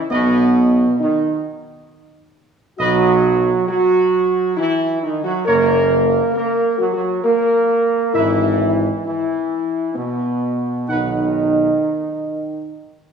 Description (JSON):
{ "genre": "classical, ceremonial fanfare", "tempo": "67 BPM", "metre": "3/4", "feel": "straight", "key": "unclear", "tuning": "A4 = 437 Hz", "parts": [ { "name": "mellow French horn section", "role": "sustained chords", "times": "0.0-12.8 s", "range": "B3 to A#4", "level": "-17 LUFS", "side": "equal", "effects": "none" }, { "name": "mellow trumpet section", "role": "melody", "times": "0.1-11.3 s", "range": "A#4 to F#5", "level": "-23 LUFS", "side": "equal", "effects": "none" }, { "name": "clear trombone section", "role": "sustained chords", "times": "0.1-12.8 s", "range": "B2 to A#3", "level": "-22 LUFS", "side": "right 4 dB", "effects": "none" }, { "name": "warm tuba", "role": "bass", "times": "0.1-11.7 s", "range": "F#1 to B1", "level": "-23 LUFS", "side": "right 2 dB", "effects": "none" } ], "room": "wet scoring stage reverb, RT60 1.7 s", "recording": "none", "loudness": "-15 LUFS", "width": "side -6 dB against mid", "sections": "0.0-13.1 A section", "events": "none", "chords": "0.1 B; 5.5 F#; 8.1 E/G#; 10.9 B" }